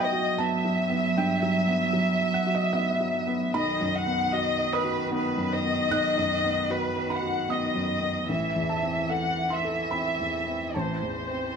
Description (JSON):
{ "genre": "neoclassical piano and strings", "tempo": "76 BPM", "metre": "3/4", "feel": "rubato", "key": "E harmonic minor", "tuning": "A4 = 440 Hz", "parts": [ { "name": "muted chamber violin section", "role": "melody", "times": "0.0-11.6 s", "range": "B4 to F#5", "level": "-27 LUFS", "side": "left 1 dB", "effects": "plate reverb" }, { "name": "muted cello", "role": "second line", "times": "0.0-11.6 s", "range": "D#3 to F#3", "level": "-32 LUFS", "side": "right 5 dB", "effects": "none" }, { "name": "felt-muted upright piano", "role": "accompaniment", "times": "0.0-11.6 s", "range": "A1 to F#6", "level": "-28 LUFS", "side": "equal", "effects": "none" } ], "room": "moderate large studio reverb, RT60 1.0 s", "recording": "none", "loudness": "-24 LUFS", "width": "side -6 dB against mid", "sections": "0.0-11.6 A section", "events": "none", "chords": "0.0 Emadd9/G; 3.5 B; 8.3 Am" }